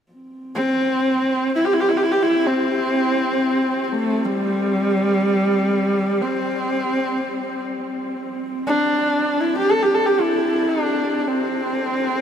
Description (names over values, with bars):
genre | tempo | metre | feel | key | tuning
mongolian traditional, Mongolian folk | free time | none | none | C gong mode | A4 = 442 Hz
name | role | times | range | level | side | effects
dark horsehead fiddle | drone | 0.1-12.2 s | C4 | -29 LUFS | equal | none
clear horsehead fiddle | melody | 0.6-12.2 s | G3 to A4 | -18 LUFS | equal | none
room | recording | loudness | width
wet huge ambient reverb, RT60 9.5 s | heard from further back in the room | -18 LUFS | side -8 dB against mid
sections
0.1-12.2 A section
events
none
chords
none